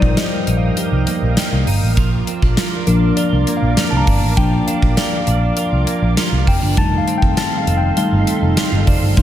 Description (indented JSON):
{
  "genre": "1980s-style pop",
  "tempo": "100 BPM",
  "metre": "4/4",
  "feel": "straight",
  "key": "Bb major",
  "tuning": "A4 = 441 Hz",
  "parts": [
    { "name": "mellow tine electric piano", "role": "accompaniment", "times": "0.0-9.2 s", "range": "F3 to Bb5", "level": "-19 LUFS", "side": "left 3 dB", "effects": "phaser, shimmer reverb" },
    { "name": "soft string machine", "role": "sustained chords", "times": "0.0-9.2 s", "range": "Eb4 to Eb6", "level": "-26 LUFS", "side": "right 3 dB", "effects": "ensemble chorus, shimmer reverb" },
    { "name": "twelve-string electric guitar", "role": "riff", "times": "0.0-9.2 s", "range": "Eb3 to G4", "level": "-24 LUFS", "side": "right 7 dB", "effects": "lush chorus, shimmer reverb" },
    { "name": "vintage muted picked electric bass", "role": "bass", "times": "0.0-9.2 s", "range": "F1 to C2", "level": "-17 LUFS", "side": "equal", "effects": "none" },
    { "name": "gated 80s drum kit", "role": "drums", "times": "0.0-9.2 s", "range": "hi-hat, kick drum, snare drum, tambourine", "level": "-18 LUFS", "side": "equal", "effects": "gated reverb" }
  ],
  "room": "light reverb, small room ambience",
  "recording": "none",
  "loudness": "-14 LUFS",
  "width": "side -11 dB against mid",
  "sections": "0.0-9.2 A section",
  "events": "tine electric piano solo 0.0-9.2",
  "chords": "0.0 Ebadd9; 2.0 Bb; 6.8 F7"
}